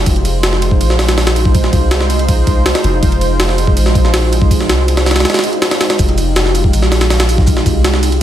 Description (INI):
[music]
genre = drum and bass, jungle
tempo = 162 BPM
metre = 4/4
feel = straight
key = F minor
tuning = A4 = 438 Hz
[part]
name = lush unison pad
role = sustained chords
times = 0.0-8.2 s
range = Ab3 to C5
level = -18 LUFS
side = right 1 dB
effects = chorus
[part]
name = long sustained 808-style bass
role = bass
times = 0.0-8.2 s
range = F1 to C2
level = -15 LUFS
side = equal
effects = none
[part]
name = jungle sampler-style drum kit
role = drums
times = 0.1-8.2 s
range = kick drum, ride cymbal, snare drum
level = -13 LUFS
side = equal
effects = none
[part]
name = crunchy breakbeat drum kit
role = drums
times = 6.0-8.1 s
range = hi-hat, shaker, snare drum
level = -29 LUFS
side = right 1 dB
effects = none
[sound]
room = small room ambience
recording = none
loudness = -10 LUFS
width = side -11 dB against mid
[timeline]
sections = 0.0-8.2 A section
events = none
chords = 0.0 Fm9